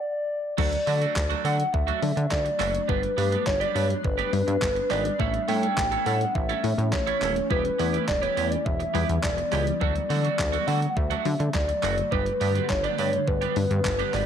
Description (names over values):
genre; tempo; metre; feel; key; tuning
dance-pop; 104 BPM; 4/4; straight; unclear; A4 = 442 Hz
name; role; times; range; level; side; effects
hollow clarinet-like synth lead; melody; 0.0-14.3 s; B4 to G5; -27 LUFS; left 1 dB; chorus, slapback echo
mallet-like synth pluck; accompaniment; 0.6-14.2 s; F#3 to C#5; -35 LUFS; left 12 dB; none
granular cloud pad; sustained chords; 1.7-14.3 s; D3 to D4; -34 LUFS; left 1 dB; built-in reverb, sidechain pumping
twelve-string electric guitar; riff; 0.6-14.3 s; F#3 to A4; -31 LUFS; right 15 dB; lush chorus
plucky analog bass; bass; 0.6-14.3 s; D#1 to D3; -27 LUFS; equal; sidechain pumping
clean 12-bit digital drum machine; drums; 0.6-14.3 s; crash cymbal, handclaps, hi-hat, kick drum, snare drum; -31 LUFS; equal; none
room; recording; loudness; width
light reverb; 1960s-style stereo with parts hard left and right; -22 LUFS; side -8 dB against mid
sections
0.6-14.3 A section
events
stop 0.0-0.6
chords
0.0 N.C.; 0.6 D; 2.9 G; 5.2 A; 7.5 Em; 9.8 D; 12.1 G